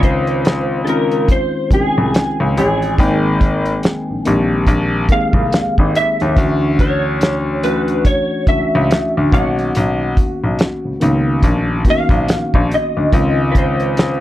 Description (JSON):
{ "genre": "R&B, neo-soul", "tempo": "71 BPM", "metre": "4/4", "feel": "swing 58% on 16ths", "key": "unclear", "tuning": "A4 = 440 Hz", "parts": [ { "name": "mellow electric guitar", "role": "melody", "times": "0.0-14.2 s", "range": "Ab4 to F#5", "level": "-20 LUFS", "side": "equal", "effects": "ensemble chorus, slapback echo" }, { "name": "tine electric piano", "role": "accompaniment", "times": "0.0-14.2 s", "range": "Eb3 to G5", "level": "-19 LUFS", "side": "left 1 dB", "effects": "none" }, { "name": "clear concert grand piano", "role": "bass", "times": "0.0-14.2 s", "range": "Ab1 to Eb2", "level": "-18 LUFS", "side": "left 1 dB", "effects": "none" }, { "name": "cloth-damped thuddy drum kit", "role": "drums", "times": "0.0-14.2 s", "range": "hi-hat, kick drum, snare drum", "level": "-15 LUFS", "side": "equal", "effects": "none" } ], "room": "little or no reverb", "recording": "dark, warm production", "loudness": "-13 LUFS", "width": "side -14 dB against mid", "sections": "0.0-14.2 A section", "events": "none", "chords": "0.0 Dbmaj9; 3.0 Abmaj9; 6.4 Dmaj9; 9.3 Bmaj9; 13.1 Dbmaj9" }